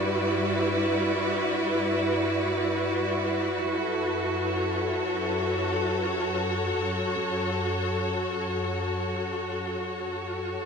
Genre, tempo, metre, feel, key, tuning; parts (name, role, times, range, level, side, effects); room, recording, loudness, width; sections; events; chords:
ambient; free time; A4 = 439 Hz
bright studio string section; sustained chords; 0.0-10.7 s; G3 to D5; -25 LUFS; equal
warm chamber cello section; bass; 0.0-10.6 s; F#2 to G2; -34 LUFS; equal
wet plate reverb, RT60 3.0 s; dreamy mix soaked in reverb, cassette tape; -25 LUFS; side -6 dB against mid
0.0-10.7 A section
0.0 Em7/G; 3.6 F#m